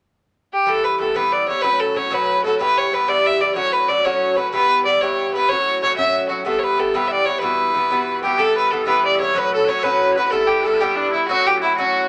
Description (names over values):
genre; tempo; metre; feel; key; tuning
celtic folk, Celtic jig; 124 BPM (dotted quarters); 6/8; straight; E dorian; A4 = 440 Hz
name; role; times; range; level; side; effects
clear fiddle; melody; 0.5-12.1 s; D4 to E5; -20 LUFS; equal; none
Irish bouzouki; accompaniment; 0.7-12.1 s; G2 to G4; -25 LUFS; equal; none
loud bright bagpipes; second line; 8.2-12.1 s; D4 to E5; -29 LUFS; equal; none
room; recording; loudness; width
wet club reverb, RT60 0.5 s; none; -18 LUFS; mono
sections
0.7-8.4 A section; 8.4-12.1 A section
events
none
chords
0.0 N.C.; 0.7 Em; 1.6 F#m; 2.6 Em; 3.5 F#m; 4.5 Em; 5.5 F#m; 6.4 Em; 7.4 Emadd9; 8.4 Em; 9.3 F#m; 10.3 Em; 11.3 F#m